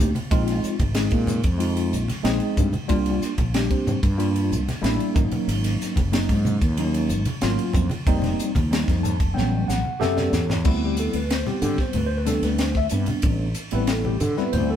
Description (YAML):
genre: electric jazz fusion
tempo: 93 BPM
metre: 4/4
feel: straight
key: Bb dorian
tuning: A4 = 440 Hz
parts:
  - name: tine electric piano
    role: accompaniment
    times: 0.0-14.8 s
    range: Gb3 to A5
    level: -25 LUFS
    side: left 1 dB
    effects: medium stereo tremolo
  - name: fretless electric bass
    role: bass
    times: 0.0-14.8 s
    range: F1 to D3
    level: -24 LUFS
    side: equal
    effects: none
  - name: crisp fusion drum kit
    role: drums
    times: 0.0-14.7 s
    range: crash cymbal, hi-hat, kick drum, ride cymbal, snare drum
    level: -25 LUFS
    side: equal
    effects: none
  - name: congas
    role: percussion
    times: 0.1-14.7 s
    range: none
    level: -30 LUFS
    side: right 1 dB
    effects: none
room: moderate stone room reverb, RT60 1.3 s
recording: band playing live in one room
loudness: -20 LUFS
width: side -10 dB against mid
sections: 0.0-10.7 A section; 10.7-14.8 B section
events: tine electric piano fill 8.7-10.7; drum fill 9.4-10.7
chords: 0.3 Bb9sus4; 2.9 C9sus4; 5.2 Ab9sus4; 8.1 F9sus4; 9.4 A13; 10.7 D13sus4